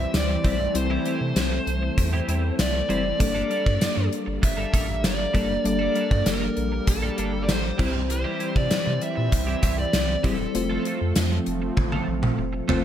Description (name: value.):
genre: 1980s-style pop.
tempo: 98 BPM.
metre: 4/4.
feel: straight.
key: unclear.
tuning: A4 = 439 Hz.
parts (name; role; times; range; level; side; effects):
dark smooth lead guitar; melody; 0.0-10.8 s; A4 to E5; -28 LUFS; equal; overdrive, diffuse ambient delay.
FM electric piano with tremolo; accompaniment; 0.0-12.8 s; G3 to C5; -30 LUFS; left 4 dB; none.
warm analog pad; sustained chords; 0.0-12.8 s; E3 to C4; -31 LUFS; right 2 dB; chorus.
twelve-string electric guitar; riff; 0.0-12.8 s; G3 to A4; -34 LUFS; right 4 dB; analog chorus, diffuse ambient delay.
round analog bass; bass; 0.0-12.8 s; E1 to C3; -28 LUFS; equal; none.
gated 80s drum kit; drums; 0.1-12.8 s; crash cymbal, hi-hat, kick drum, snare drum, tambourine, toms; -25 LUFS; equal; none.
room: moderate plate reverb, RT60 1.9 s.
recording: dreamy mix soaked in reverb.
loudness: -21 LUFS.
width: side -10 dB against mid.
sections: 0.0-12.8 A section.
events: drum fill 11.8-12.8.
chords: 0.0 C; 3.2 Gmadd9; 7.8 C; 10.5 F.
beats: 0.14 | 0.75 1.37 1.98 2.59 | 3.20 3.81 4.43 5.04 | 5.65 6.26 6.88 7.49 | 8.10 8.71 9.32 9.94 | 10.55 11.16 11.77 12.39.